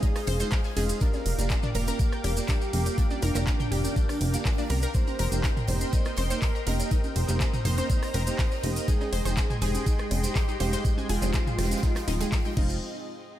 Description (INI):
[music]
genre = progressive house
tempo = 122 BPM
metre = 4/4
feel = straight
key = unclear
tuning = A4 = 438 Hz
[part]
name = wide unison lead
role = melody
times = 0.0-12.8 s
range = D4 to C5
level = -35 LUFS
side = equal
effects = sidechain pumping, ping-pong delay
[part]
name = lush unison pad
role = sustained chords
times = 0.0-12.8 s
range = Ab3 to Eb6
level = -37 LUFS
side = equal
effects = chorus, phaser, sidechain pumping
[part]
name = analog pluck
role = arpeggios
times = 0.0-12.8 s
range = D4 to Bb5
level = -37 LUFS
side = left 2 dB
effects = chorus, sidechain pumping, ping-pong delay
[part]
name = dark concert grand piano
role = stabs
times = 0.0-12.8 s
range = Ab3 to G5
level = -35 LUFS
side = right 3 dB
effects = wide subtle chorus, sidechain pumping, ping-pong delay
[part]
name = electronic kick drum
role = drums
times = 0.0-12.7 s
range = none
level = -25 LUFS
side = equal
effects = small room ambience
[part]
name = modern studio drum kit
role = drums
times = 0.0-12.5 s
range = hi-hat, snare drum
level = -45 LUFS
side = right 4 dB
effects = none
[part]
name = pop drum kit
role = drums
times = 0.0-12.7 s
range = crash cymbal, handclaps, hi-hat, ride cymbal, rim click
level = -36 LUFS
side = equal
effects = sidechain pumping on hats, small room ambience, sidechain pumping on cymbals
[part]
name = electronic bongos, congas and toms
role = percussion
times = 0.0-12.7 s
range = none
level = -37 LUFS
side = right 2 dB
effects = sidechain pumping on perc, small room ambience, sidechain pumping on toms
[part]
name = maracas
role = percussion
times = 0.0-12.8 s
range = none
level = -40 LUFS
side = right 1 dB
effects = none
[part]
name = plucky analog bass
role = bass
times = 0.3-12.8 s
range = Eb1 to C2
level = -28 LUFS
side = equal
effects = sidechain pumping
[sound]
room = light reverb, small room ambience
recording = none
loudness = -24 LUFS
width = side -12 dB against mid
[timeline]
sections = 0.0-12.8 A section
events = drop 0.0-12.8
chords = 0.0 Fm7; 1.0 Gm7/F; 4.9 Cm7/F; 8.9 Abmaj7/F; 12.6 Fm7; 12.8 N.C.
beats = 0.03 0.52 | 1.01 1.50 2.00 2.49 | 2.98 3.47 3.96 4.45 | 4.95 5.44 5.93 6.42 | 6.91 7.41 7.90 8.39 | 8.88 9.37 9.86 10.36 | 10.85 11.34 11.83 12.32